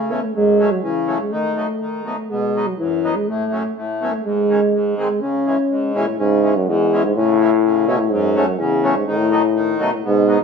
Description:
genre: alpine folk.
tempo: 124 BPM.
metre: 2/4.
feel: straight.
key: C# minor.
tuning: A4 = 439 Hz.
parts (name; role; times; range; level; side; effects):
mellow euphonium; melody; 0.0-10.4 s; E2 to C#4; -17 LUFS; left 1 dB; none.
accordion; accompaniment; 0.0-10.4 s; F#2 to D#4; -22 LUFS; left 1 dB; none.
room: moderate studio reverb, RT60 0.9 s.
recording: band playing live in one room.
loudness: -16 LUFS.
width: side -5 dB against mid.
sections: 0.0-6.2 A section; 6.2-10.4 A section.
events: none.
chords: 0.3 F#m; 1.3 D#dim; 2.3 B; 3.3 F#m/A; 4.2 G#sus4; 4.7 G#; 5.2 C#m; 7.2 A; 8.1 F#m; 9.1 D#dim.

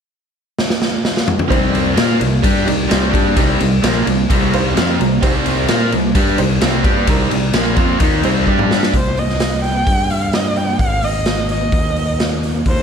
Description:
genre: classic rock.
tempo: 129 BPM.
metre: 4/4.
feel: straight.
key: C minor.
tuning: A4 = 440 Hz.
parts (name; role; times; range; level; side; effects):
raw garage drum kit; drums; 0.6-12.8 s; hi-hat, kick drum, ride cymbal, snare drum, toms; -17 LUFS; equal; none.
tack piano; accompaniment; 1.5-8.8 s; D4 to Bb5; -25 LUFS; right 4 dB; slapback echo.
cranked stack guitar; riff; 1.5-8.9 s; Bb2 to Bb4; -20 LUFS; right 10 dB; overdrive, slapback echo.
raw garage guitar; riff; 1.5-8.9 s; Bb2 to Bb4; -19 LUFS; left 10 dB; overdrive, slapback echo.
growling fingered electric bass; bass; 1.5-12.8 s; Ab1 to Bb2; -20 LUFS; equal; overdrive.
warm erhu; melody; 9.0-12.8 s; C5 to G5; -20 LUFS; right 1 dB; slapback echo.
room: moderate recital hall reverb, RT60 1.4 s, small room ambience.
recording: big arena sound.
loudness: -13 LUFS.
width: side -7 dB against mid.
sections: 0.0-1.5 A section; 1.5-8.9 B section; 8.9-12.8 C section.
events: drum fill 0.6-1.5, 8.5-8.9; honky-tonk piano fill 4.3-5.2.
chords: 0.0 N.C.; 1.5 Cm; 8.5 G5; 8.9 Cm; 10.8 Ab5.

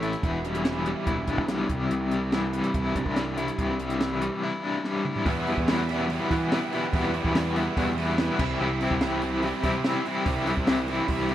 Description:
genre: indie rock.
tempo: 144 BPM.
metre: 4/4.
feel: straight.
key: E minor.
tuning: A4 = 438 Hz.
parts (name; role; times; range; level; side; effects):
crunchy overdriven guitar; riff; 0.0-11.3 s; A2 to E4; -36 LUFS; right 14 dB; ensemble chorus, tape echo.
overdriven electric guitar; riff; 0.0-11.3 s; E2 to E4; -26 LUFS; left 2 dB; tremolo.
fuzz picked electric bass; bass; 0.0-11.3 s; E1 to E3; -30 LUFS; right 1 dB; overdrive.
compact cocktail drum kit; drums; 0.0-11.3 s; crash cymbal, hi-hat, kick drum, snare drum, toms; -30 LUFS; right 1 dB; none.
phased analog pad; sustained chords; 5.9-11.3 s; E4 to B5; -41 LUFS; right 4 dB; none.
room: small room ambience.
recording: rough home demo mix.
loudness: -24 LUFS.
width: side -12 dB against mid.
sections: 0.0-5.3 A section; 5.3-11.3 B section.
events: drum fill 4.8-5.3.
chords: 0.2 Em7; 1.7 Cadd9; 5.3 Em7; 8.4 Cmaj7.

